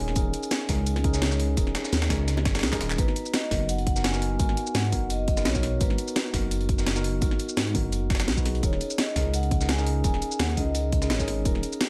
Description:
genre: liquid drum and bass.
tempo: 170 BPM.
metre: 4/4.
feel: swing 54% on 16ths.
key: G# minor.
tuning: A4 = 440 Hz.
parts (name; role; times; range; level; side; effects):
vibraphone with medium mallets; melody; 0.0-6.3, 8.6-11.9 s; A#4 to G#5; -37 LUFS; equal; analog delay.
mellow tine electric piano; accompaniment; 0.0-11.9 s; B3 to A#5; -34 LUFS; equal; analog delay.
dark detuned saw bass; bass; 0.0-11.6 s; D#1 to G#2; -30 LUFS; equal; none.
garage drum kit; drums; 0.1-11.9 s; handclaps, hi-hat, shaker, snare drum; -32 LUFS; equal; none.
breakbeat sampler-style drum kit; drums; 0.2-11.9 s; hi-hat, snare drum; -37 LUFS; equal; high-pass filter on hats, high-pass filter on snare, high-pass filter on room.
electronic kick drum; drums; 0.2-11.5 s; none; -30 LUFS; equal; none.
bongos; percussion; 1.7-2.8 s; none; -41 LUFS; equal; none.
room: light reverb.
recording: none.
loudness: -26 LUFS.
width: mono.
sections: 0.0-3.0 A section; 3.0-11.9 A section.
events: drop 0.0-3.0, 3.0-11.9; drum fill 2.7.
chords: 0.0 D#7sus4; 3.0 G#m7; 8.6 D#7sus4.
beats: | 0.16 0.52 0.87 1.22 | 1.57 1.93 2.28 2.63 | 2.98 3.34 3.69 4.04 | 4.40 4.75 5.10 5.46 | 5.81 6.16 6.51 6.87 | 7.22 7.57 7.93 8.28 | 8.63 8.98 9.34 9.69 | 10.04 10.40 10.75 11.10 | 11.46 11.81.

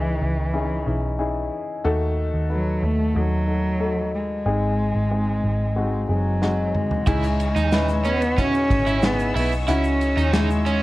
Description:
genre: piano-driven pop.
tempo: 92 BPM.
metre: 4/4.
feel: straight.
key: C# minor.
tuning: A4 = 439 Hz.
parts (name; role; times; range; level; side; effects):
dark cello; melody; 0.0-10.8 s; E3 to C#4; -24 LUFS; equal; none.
warm upright piano; accompaniment; 0.0-10.8 s; G#2 to B4; -26 LUFS; left 3 dB; none.
vintage muted picked electric bass; bass; 0.0-10.8 s; F#1 to D#2; -24 LUFS; equal; none.
unplugged drum kit; drums; 6.4-10.8 s; crash cymbal, hi-hat, kick drum, ride cymbal, snare drum, toms; -26 LUFS; equal; none.
clear symphonic string section; sustained chords; 7.1-10.8 s; G#4 to E6; -35 LUFS; left 3 dB; none.
overdriven electric guitar; riff; 7.1-10.8 s; C#4 to E4; -27 LUFS; right 5 dB; none.
egg shaker; percussion; 7.1-10.8 s; none; -49 LUFS; left 5 dB; none.
room: light reverb, small room ambience.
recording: worn, warbling old tape, cassette tape, warbly pitch drift.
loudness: -19 LUFS.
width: side -18 dB against mid.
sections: 0.0-7.1 A section; 7.1-10.8 B section.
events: drum fill 6.4-7.1.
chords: 0.0 C#madd9; 1.8 D#dim; 4.5 G#; 7.1 C#madd9.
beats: 0.54 1.19 | 1.84 2.50 3.15 3.81 | 4.46 5.11 5.76 6.42 | 7.07 7.72 8.38 9.03 | 9.68 10.34.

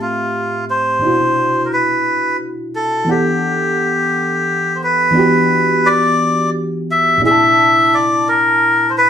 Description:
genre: R&B.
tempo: 58 BPM (dotted quarters).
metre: 6/8.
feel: straight.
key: E minor.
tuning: A4 = 441 Hz.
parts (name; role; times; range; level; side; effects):
melodica; melody; 0.0-9.1 s; F4 to E5; -13 LUFS; equal; none.
mellow FM electric piano; accompaniment; 0.0-9.1 s; A2 to A5; -18 LUFS; equal; chorus.
room: wet studio reverb, RT60 0.6 s.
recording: band playing live in one room.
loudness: -12 LUFS.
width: side -8 dB against mid.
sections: 0.0-5.2 A section; 5.2-9.1 B section.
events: none.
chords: 0.0 Fmaj9/A; 1.0 Cmaj9#11; 3.1 Em11; 5.2 Em9; 7.2 C13.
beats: | 1.02 2.05 | 3.08 4.12 | 5.15 6.19 | 7.22 8.26.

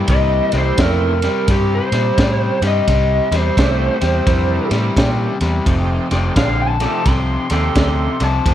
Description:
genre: electric blues shuffle.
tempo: 86 BPM.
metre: 4/4.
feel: swing 63% on 8ths.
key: C mixolydian.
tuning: A4 = 440 Hz.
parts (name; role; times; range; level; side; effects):
bright tonewheel organ; accompaniment; 0.0-8.5 s; E3 to Bb4; -26 LUFS; right 8 dB; slow rotary speaker, overdrive, chorus vibrato.
overdriven electric guitar; riff; 0.0-8.5 s; F2 to A3; -21 LUFS; left 3 dB; none.
lead guitar through a small cranked amp; melody; 0.1-8.5 s; G4 to C6; -20 LUFS; equal; overdrive, slapback echo.
vintage muted fingered electric bass; bass; 0.1-8.5 s; F1 to Bb2; -18 LUFS; equal; none.
crunchy breakbeat drum kit; drums; 0.1-8.5 s; kick drum, ride cymbal, snare drum; -19 LUFS; equal; none.
bright saxophone section; stabs; 6.8-8.3 s; Eb4 to A4; -25 LUFS; right 9 dB; none.
room: light reverb.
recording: none.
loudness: -14 LUFS.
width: side -11 dB against mid.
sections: 0.0-8.5 A section.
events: lead electric guitar solo 0.0-8.5.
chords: 0.0 C9; 5.7 F9.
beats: | 0.09 0.79 1.48 2.18 | 2.88 3.57 4.27 4.97 | 5.67 6.36 7.06 7.76 | 8.46.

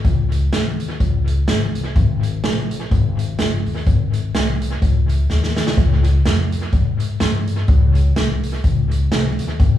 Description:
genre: ska.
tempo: 126 BPM.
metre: 4/4.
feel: swing 57% on 8ths.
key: unclear.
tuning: A4 = 440 Hz.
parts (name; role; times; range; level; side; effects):
upright bass; bass; 0.0-9.8 s; G1 to Ab2; -19 LUFS; left 1 dB; none.
street-band drum kit; drums; 0.0-9.7 s; hi-hat, kick drum, snare drum; -18 LUFS; left 1 dB; analog delay.
room: moderate large studio reverb, RT60 1.2 s.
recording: band playing live in one room, small room ambience.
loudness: -16 LUFS.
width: side -11 dB against mid.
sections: 0.0-9.8 A section.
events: drum fill 5.3-5.8.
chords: none.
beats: | 0.05 0.52 1.00 1.48 | 1.96 2.43 2.91 3.39 | 3.86 4.34 4.82 5.30 | 5.78 6.25 6.73 7.21 | 7.69 8.16 8.64 9.12 | 9.60.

